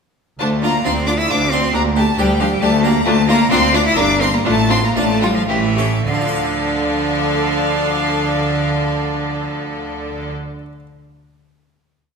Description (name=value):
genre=classical, baroque-style concerto movement with solo episodes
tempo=103-137 BPM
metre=3/4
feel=straight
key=D minor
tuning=A4 = 440 Hz
part: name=clear cello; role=melody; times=0.4-10.3 s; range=E3 to E4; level=-19 LUFS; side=left 2 dB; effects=none
part: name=rich chamber violin section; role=melody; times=0.4-10.3 s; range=E5 to E6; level=-22 LUFS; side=left 3 dB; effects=none
part: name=rich chamber violin section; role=second line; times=0.4-10.3 s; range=F4 to Bb4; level=-24 LUFS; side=left 2 dB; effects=none
part: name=clear chamber viola section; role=accompaniment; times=0.4-10.3 s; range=C#4 to D4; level=-24 LUFS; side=right 3 dB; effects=none
part: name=harpsichord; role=accompaniment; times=0.4-10.9 s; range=D2 to F5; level=-26 LUFS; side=right 1 dB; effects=none
part: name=rich chamber double bass section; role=bass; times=0.4-10.3 s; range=G1 to D2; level=-24 LUFS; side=right 2 dB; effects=none
part: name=rich symphonic cello section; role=bass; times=0.4-10.3 s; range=D2 to D3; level=-23 LUFS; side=right 3 dB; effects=none
room=wet recital hall reverb, RT60 1.5 s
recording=none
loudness=-14 LUFS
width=side -5 dB against mid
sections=0.4-6.1 ritornello; 6.1-9.5 final chord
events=slowing down 2.4-6.1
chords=0.4 Dm; 1.7 G5/D; 3.1 Dm; 4.0 Gm; 4.5 Dm/A; 5.5 A7; 6.1 Dm